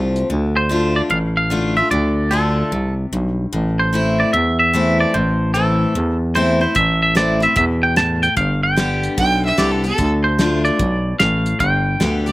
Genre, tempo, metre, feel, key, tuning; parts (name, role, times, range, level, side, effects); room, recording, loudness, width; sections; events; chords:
honky-tonk and classic country; 149 BPM; 4/4; swing 65% on 8ths; A4 = 440 Hz
picked steel-string acoustic guitar; accompaniment; 0.0-12.3 s; E2 to G4; -21 LUFS; left 2 dB; slapback echo
growling FM bass; bass; 0.0-12.3 s; G1 to E2; -19 LUFS; equal
cloth-damped thuddy drum kit; drums; 0.2, 6.8-12.3 s; hi-hat, kick drum, snare drum; -21 LUFS; equal
twangy electric guitar; melody; 0.6-12.3 s; A4 to A5; -18 LUFS; right 1 dB; slapback echo
clear fiddle; second line; 9.2-12.3 s; A4 to G5; -20 LUFS; right 2 dB; slapback echo
little or no reverb; recorded outdoors, with no room sound; -15 LUFS; side -18 dB against mid
0.3-12.3 A section
0.3 Dm; 3.5 Am; 8.4 G; 10.0 Dm; 11.6 G